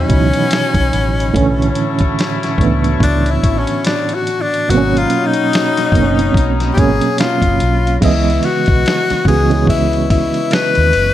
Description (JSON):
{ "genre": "R&B, neo-soul", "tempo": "72 BPM", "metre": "4/4", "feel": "swing 57% on 16ths", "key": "C# minor", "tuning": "A4 = 440 Hz", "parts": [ { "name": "bright tenor saxophone", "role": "melody", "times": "0.0-11.1 s", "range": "C#4 to B4", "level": "-17 LUFS", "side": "left 4 dB", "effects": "slapback echo" }, { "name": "reed electric piano", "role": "accompaniment", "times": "0.0-11.1 s", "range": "A2 to D#5", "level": "-17 LUFS", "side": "right 5 dB", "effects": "fast tremolo" }, { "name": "chorused pulse-width pad", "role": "sustained chords", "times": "0.0-11.1 s", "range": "F#3 to C#6", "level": "-27 LUFS", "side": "left 2 dB", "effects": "none" }, { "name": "vintage muted fingered electric bass", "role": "bass", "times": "0.0-11.1 s", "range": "F#1 to D#2", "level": "-17 LUFS", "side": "equal", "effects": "none" }, { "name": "dusty soul sampler-style drum kit", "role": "drums", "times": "0.1-11.1 s", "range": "crash cymbal, hi-hat, kick drum, ride cymbal, snare drum", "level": "-18 LUFS", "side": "equal", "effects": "none" }, { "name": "clear horn section", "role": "stabs", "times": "1.3-7.6 s", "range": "F#3 to E4", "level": "-24 LUFS", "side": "left 6 dB", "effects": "none" } ], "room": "digital ambience", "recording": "none", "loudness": "-12 LUFS", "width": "side -12 dB against mid", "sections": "0.0-8.0 A section; 8.0-11.1 B section", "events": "tenor saxophone solo 0.0-8.0", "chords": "0.0 C#m11; 1.3 Bm11; 4.7 G#m11; 8.0 C#m9", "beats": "0.51 | 1.35 2.18 3.01 3.85 | 4.68 5.51 6.35 7.18 | 8.01 8.85 9.68 10.51" }